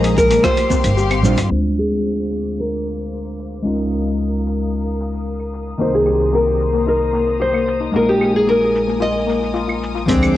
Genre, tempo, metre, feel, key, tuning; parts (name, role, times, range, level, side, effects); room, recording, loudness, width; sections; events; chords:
sunset chillout; 112 BPM; 4/4; straight; A4 = 439 Hz
nylon-string guitar; melody; 0.0-10.4 s; C4 to Eb5; -18 LUFS; equal; cassette tape, analog delay
mellow electric guitar; accompaniment; 0.0-10.4 s; Eb3 to C5; -22 LUFS; equal; auto-pan, cassette tape, analog delay
bright symphonic string section; sustained chords; 0.0-10.4 s; G4 to Eb6; -30 LUFS; left 2 dB; low-pass filter, cassette tape
steel pan; arpeggios; 0.0-1.5, 5.8-10.4 s; Bb3 to Ab4; -22 LUFS; left 7 dB; cassette tape, analog delay
upright bass; bass; 0.0-10.4 s; G1 to G2; -23 LUFS; equal
dusty soul sampler-style drum kit; drums; 0.0-10.3 s; claves, hi-hat, rim click, shaker; -27 LUFS; right 1 dB; low-pass filter on perc, studio reverb, cassette tape, low-pass filter on hats, low-pass filter on snare
electronic kick drum; drums; 0.2-0.8, 10.1-10.2 s; -20 LUFS; equal; studio reverb, cassette tape
congas; percussion; 0.3-1.5 s; -27 LUFS; right 9 dB
light reverb, studio reverb; home recording on cassette, low-pass filter; -15 LUFS; side -13 dB against mid
0.0-1.5 A section; 1.5-10.1 B section
filter sweep on string section 1.5-10.1; filter sweep 1.5-10.1
0.4 G7sus4; 1.5 Dm7b5; 3.7 Db69; 5.8 Cm7; 7.9 Bb7sus4